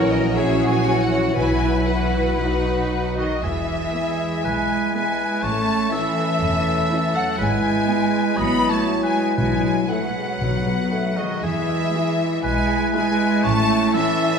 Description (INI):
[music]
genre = classical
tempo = 114-125 BPM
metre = 4/4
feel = rubato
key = E major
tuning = A4 = 440 Hz
[part]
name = warm symphonic violin section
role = melody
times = 0.0-14.4 s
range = D#5 to B5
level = -28 LUFS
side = left 4 dB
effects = none
[part]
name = warm symphonic violin section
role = second line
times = 0.0-14.4 s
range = F#4 to B5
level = -27 LUFS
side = left 2 dB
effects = none
[part]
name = warm symphonic viola section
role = accompaniment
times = 0.0-14.3 s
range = E3 to G#4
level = -29 LUFS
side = right 1 dB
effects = none
[part]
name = warm French horn section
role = sustained chords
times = 0.0-14.4 s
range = F#3 to E4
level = -25 LUFS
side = left 2 dB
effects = none
[part]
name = bright symphonic cello section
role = bass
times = 0.0-14.4 s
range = D#3 to B4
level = -24 LUFS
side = right 4 dB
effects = none
[part]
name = warm symphonic double bass section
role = bass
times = 0.0-13.8 s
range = E1 to E2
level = -27 LUFS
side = right 2 dB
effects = none
[part]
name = timpani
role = percussion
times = 1.4-2.1, 9.4-11.1 s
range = B2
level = -27 LUFS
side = left 3 dB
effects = none
[part]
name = warm oboe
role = second line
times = 3.2-14.4 s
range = F#4 to D#5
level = -26 LUFS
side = right 1 dB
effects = none
[sound]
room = wet scoring stage reverb, RT60 1.7 s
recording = heard from further back in the room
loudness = -18 LUFS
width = side -6 dB against mid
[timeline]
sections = 0.0-3.4 A section; 3.4-14.4 B section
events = none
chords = 0.0 F#7/A#; 1.4 Bsus4; 2.4 B; 3.4 E; 5.4 A; 7.4 E/G#; 8.4 F#m7/A; 9.4 Bsus4; 10.4 B; 11.4 E; 13.4 A